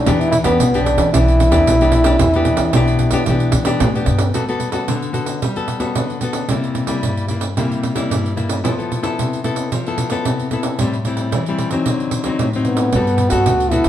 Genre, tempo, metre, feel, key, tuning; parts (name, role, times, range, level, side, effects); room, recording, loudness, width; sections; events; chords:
samba and choro; 112 BPM; 4/4; straight; E minor, G major from 4.3 s; A4 = 440 Hz
breathy trombone; melody; 0.0-3.8, 12.6-13.9 s; B3 to F#4; -17 LUFS; equal; plate reverb
nylon-string guitar; accompaniment; 0.0-13.9 s; G2 to A4; -20 LUFS; left 3 dB
upright bass; bass; 0.1-4.3, 12.9-13.9 s; B1 to E3; -18 LUFS; equal
pandeiro; percussion; 0.1-13.9 s; -21 LUFS; right 3 dB
moderate large studio reverb, RT60 1.0 s; heard from further back in the room; -15 LUFS; side -11 dB against mid
0.0-4.3 A section; 4.3-12.9 B section
0.1 Em7; 4.3 Gmaj9; 6.5 C7; 8.6 Fmaj7#11; 10.8 Am7; 11.9 D7b9; 12.9 Gmaj9